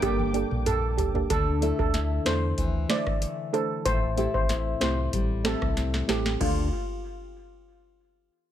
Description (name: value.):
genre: dancehall.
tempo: 94 BPM.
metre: 4/4.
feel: straight.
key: unclear.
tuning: A4 = 440 Hz.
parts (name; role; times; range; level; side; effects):
steel pan; melody; 0.0-6.7 s; F4 to D5; -30 LUFS; right 3 dB; low-pass filter, tape echo.
lush unison pad; sustained chords; 0.0-1.3 s; Bb3 to D6; -37 LUFS; right 2 dB; chorus, sidechain pumping.
nylon-string guitar; arpeggios; 0.0-7.2 s; G2 to A4; -32 LUFS; left 5 dB; low-pass filter.
sub bass with octave; bass; 0.0-6.7 s; G1 to E2; -29 LUFS; equal; none.
booming analog drum machine; drums; 0.0-6.6 s; crash cymbal, hi-hat, kick drum, rim click, snare drum, toms; -29 LUFS; equal; none.
soft round pluck; accompaniment; 0.3-6.7 s; A3 to C5; -32 LUFS; right 3 dB; chorus, low-pass filter.
room: little or no reverb.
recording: none.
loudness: -24 LUFS.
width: side -11 dB against mid.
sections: 0.0-1.3 A section; 1.3-6.4 B section; 6.4-8.5 C section.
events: drum fill 0.0-1.3, 5.8-6.4; filter sweep 1.3-6.4.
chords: 0.0 Gmadd9; 1.3 Dsus2; 3.9 Am7; 6.4 Dm.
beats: 0.03 0.66 | 1.30 1.94 2.58 3.22 | 3.85 4.49 5.13 5.77 | 6.41 7.05.